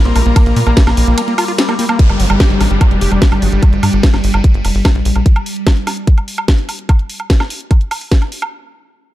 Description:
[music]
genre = psychedelic trance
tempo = 147 BPM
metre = 4/4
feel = straight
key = G minor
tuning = A4 = 441 Hz
[part]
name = evolving wavetable pad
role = sustained chords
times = 0.0-6.9 s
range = G3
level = -22 LUFS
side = equal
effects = phaser, built-in reverb, sidechain pumping
[part]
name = clear studio string section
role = texture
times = 0.0-5.3 s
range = D4 to Bb5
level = -26 LUFS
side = right 2 dB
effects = sidechain pumping
[part]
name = metallic wobble bass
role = second line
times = 0.1-1.9 s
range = G3 to C4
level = -30 LUFS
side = left 4 dB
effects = none
[part]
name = overdriven acid bass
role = riff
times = 0.1-3.6 s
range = F3 to G4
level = -18 LUFS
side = left 1 dB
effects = distortion, auto-pan, sidechain pumping, ping-pong delay
[part]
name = tight sequencer bass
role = bass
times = 0.1-5.2 s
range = F1 to Bb2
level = -14 LUFS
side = equal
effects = none
[part]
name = garage drum kit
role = drums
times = 0.1-8.5 s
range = hi-hat, ride cymbal, snare drum, woodblock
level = -19 LUFS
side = equal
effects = none
[part]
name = electronic kick drum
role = drums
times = 0.4-8.2 s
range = none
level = -10 LUFS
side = equal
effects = none
[part]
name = downlifter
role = sound effects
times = 2.0-5.3 s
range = none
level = -25 LUFS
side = equal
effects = none
[sound]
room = digital ambience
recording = dark, warm production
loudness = -10 LUFS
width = side -15 dB against mid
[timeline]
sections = 0.0-2.0 A section; 2.0-8.5 B section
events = drop 0.0-2.0; break 1.2-2.0; fade-out on string section 2.0-5.3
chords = 0.0 Bb5; 2.0 G5

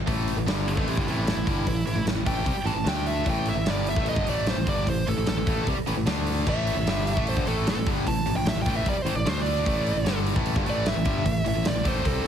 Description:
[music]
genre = hard rock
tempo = 150 BPM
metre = 4/4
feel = straight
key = A minor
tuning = A4 = 441 Hz
[part]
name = distorted electric guitar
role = riff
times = 0.1-12.3 s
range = G2 to D4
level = -31 LUFS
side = left 13 dB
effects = overdrive
[part]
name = tight distorted guitar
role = riff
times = 0.1-12.3 s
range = G2 to D4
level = -31 LUFS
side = right 11 dB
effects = distortion
[part]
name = modern bright fingered electric bass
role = bass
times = 0.1-12.3 s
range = G1 to D2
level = -29 LUFS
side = equal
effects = none
[part]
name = huge arena drum kit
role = drums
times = 0.1-12.1 s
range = crash cymbal, hi-hat, kick drum, snare drum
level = -28 LUFS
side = equal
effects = none
[part]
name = bluesy overdriven lead guitar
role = melody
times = 0.7-12.3 s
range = C4 to A5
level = -30 LUFS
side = right 2 dB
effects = distortion, analog delay
[sound]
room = light reverb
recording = heavily compressed radio sound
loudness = -23 LUFS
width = side -8 dB against mid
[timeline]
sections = 0.1-12.3 A section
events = lead electric guitar solo 0.1-12.3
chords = 0.1 A5; 2.9 D5; 3.3 A5; 6.1 D5; 6.5 A5; 9.3 D5; 9.7 Am

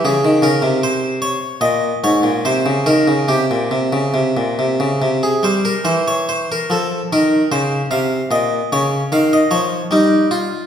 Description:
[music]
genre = classical, baroque-style suite movement for harpsichord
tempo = 73 BPM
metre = 4/4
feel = uneven beats, rubato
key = unclear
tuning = A4 = 440 Hz
[part]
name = harpsichord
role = solo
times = 0.0-10.7 s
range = Ab2 to F5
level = -14 LUFS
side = equal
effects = none
[sound]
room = wet recital hall reverb, RT60 1.4 s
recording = heard from further back in the room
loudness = -14 LUFS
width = side -8 dB against mid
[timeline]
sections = 0.0-10.7 A section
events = none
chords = 0.0 Bbm9; 1.6 Abadd9 (rootless); 3.3 C; 6.7 F5; 8.3 Bbm; 9.9 G7(no3)

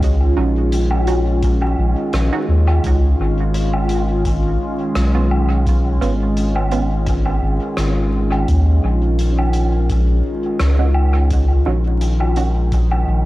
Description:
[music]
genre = ambient dub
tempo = 85 BPM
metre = 4/4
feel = swing 54% on 16ths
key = unclear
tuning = A4 = 440 Hz
[part]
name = warbly tape-like pad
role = sustained chords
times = 0.0-13.3 s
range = Eb3 to F4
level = -21 LUFS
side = equal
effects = chorus, built-in reverb, phaser, cassette tape
[part]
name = soft dub sub bass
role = bass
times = 0.0-13.2 s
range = Ab1 to Eb2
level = -16 LUFS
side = equal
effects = none
[part]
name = electronic kick drum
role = drums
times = 0.0-12.9 s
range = none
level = -23 LUFS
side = equal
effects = none
[part]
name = soft-mallet drum kit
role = drums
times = 0.0-13.0 s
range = hi-hat, rim click, woodblock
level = -27 LUFS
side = equal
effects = cassette tape, dub echo
[part]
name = filtered dub chord stab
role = stabs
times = 0.4-12.5 s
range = Cb4 to Gb4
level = -27 LUFS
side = right 6 dB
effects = phaser, vintage 12-bit sampler grit, cassette tape, dub echo, plate reverb
[sound]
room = little or no reverb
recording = home recording on cassette, vinyl crackle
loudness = -14 LUFS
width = side -17 dB against mid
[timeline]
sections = 0.0-13.3 A section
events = none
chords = 0.0 Ebm7; 2.8 Db7; 8.5 Eb7(no3)

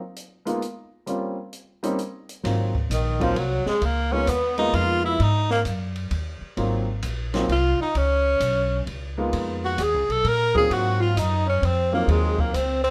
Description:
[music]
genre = jazz, small-group swing and bop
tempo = 131 BPM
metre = 3/4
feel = swing 66% on 8ths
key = Ab mixolydian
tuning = A4 = 440 Hz
[part]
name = open jazz drum kit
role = drums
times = 0.2-12.9 s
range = hi-hat, kick drum, ride cymbal, snare drum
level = -36 LUFS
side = equal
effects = none
[part]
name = warm baby grand piano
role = accompaniment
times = 0.5-12.5 s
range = Gb3 to F4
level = -30 LUFS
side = equal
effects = none
[part]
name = upright bass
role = bass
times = 2.4-12.9 s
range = Ab1 to Bb2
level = -27 LUFS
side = equal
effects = none
[part]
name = bright tenor saxophone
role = melody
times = 2.9-12.9 s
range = Eb3 to Bb4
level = -26 LUFS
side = equal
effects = none
[part]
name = warm tenor saxophone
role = second line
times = 2.9-12.9 s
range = Eb3 to Bb4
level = -31 LUFS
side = equal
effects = none
[sound]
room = moderate studio reverb, RT60 0.8 s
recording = dark, warm production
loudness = -23 LUFS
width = mono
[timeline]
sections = 0.0-2.4 A section; 2.4-12.9 B section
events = upright bass solo 0.0-2.4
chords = 0.0 Absus2; 0.6 N.C.; 1.1 Eb13; 2.4 Ab13; 3.8 Db13; 5.2 Ab13; 8.0 Db13; 10.7 Ab13

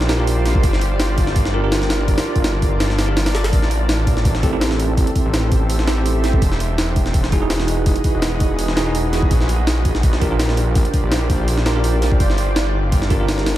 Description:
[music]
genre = drum and bass, jungle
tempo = 166 BPM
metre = 4/4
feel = straight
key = A phrygian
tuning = A4 = 439 Hz
[part]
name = bell-like tine electric piano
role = stabs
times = 0.0-13.6 s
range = C4 to Bb4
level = -24 LUFS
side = right 2 dB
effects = fast stereo tremolo, dub echo
[part]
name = detuned saw bass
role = bass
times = 0.0-13.6 s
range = E1 to Bb1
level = -19 LUFS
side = equal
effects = tube saturation
[part]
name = jungle sampler-style drum kit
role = drums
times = 0.0-13.6 s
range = hi-hat, kick drum, snare drum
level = -19 LUFS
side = equal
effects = none
[sound]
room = little or no reverb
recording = vinyl crackle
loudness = -15 LUFS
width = side -14 dB against mid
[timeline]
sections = 0.0-13.6 A section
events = none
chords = 0.0 Bb6; 0.6 Gm7; 3.5 Am7; 6.4 Emaj9; 9.3 Bb6; 12.2 Gm7

